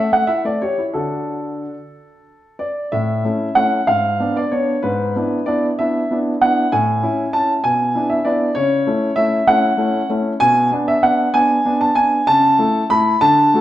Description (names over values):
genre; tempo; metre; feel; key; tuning
classical-period piano sonatina; 64 BPM (dotted quarters); 6/8; rubato; A major; A4 = 440 Hz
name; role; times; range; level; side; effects
warm concert grand piano; solo; 0.0-13.6 s; G#2 to B5; -15 LUFS; equal; none
room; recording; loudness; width
wet recital hall reverb, RT60 1.3 s; dark, warm production; -15 LUFS; side -13 dB against mid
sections
0.0-2.9 A section; 2.9-13.6 B section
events
none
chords
0.0 A5; 0.9 D; 2.9 A; 3.9 G#dim7; 4.8 E7/G#; 6.7 A; 7.6 E7/B; 8.6 A/C#; 10.4 Bm6; 12.3 A/C#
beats
| 0.93 1.93 | 2.93 3.88 | 4.83 5.78 | 6.72 7.64 | 8.56 9.48 | 10.40 11.34 | 12.27 13.21